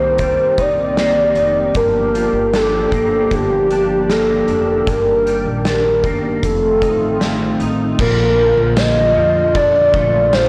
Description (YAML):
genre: dream pop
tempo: 77 BPM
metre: 4/4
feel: straight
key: Bb major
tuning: A4 = 438 Hz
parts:
  - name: hollow clarinet-like synth lead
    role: melody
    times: 0.0-10.5 s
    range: G4 to Eb5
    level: -17 LUFS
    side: equal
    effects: chorus, digital delay
  - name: warm analog pad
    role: sustained chords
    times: 0.0-10.5 s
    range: Bb2 to G4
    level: -24 LUFS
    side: equal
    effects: chorus
  - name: clean electric guitar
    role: arpeggios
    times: 0.0-10.5 s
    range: F2 to Eb4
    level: -26 LUFS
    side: equal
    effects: ensemble chorus, digital delay
  - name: upright bass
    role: bass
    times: 0.0-10.5 s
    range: F1 to F2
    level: -26 LUFS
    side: equal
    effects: none
  - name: oversized low-tuned drum kit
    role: drums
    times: 0.2-10.5 s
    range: crash cymbal, hi-hat, kick drum, ride cymbal, snare drum, tambourine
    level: -25 LUFS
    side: equal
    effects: none
room: moderate studio reverb, RT60 0.6 s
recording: blown-out, overdriven recording, overdrive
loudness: -15 LUFS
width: mono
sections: 0.0-8.0 A section; 8.0-10.5 B section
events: none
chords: 0.0 Cm7; 1.8 Gm7; 4.9 Ebmaj7/G; 6.4 F7; 8.0 Bbmaj7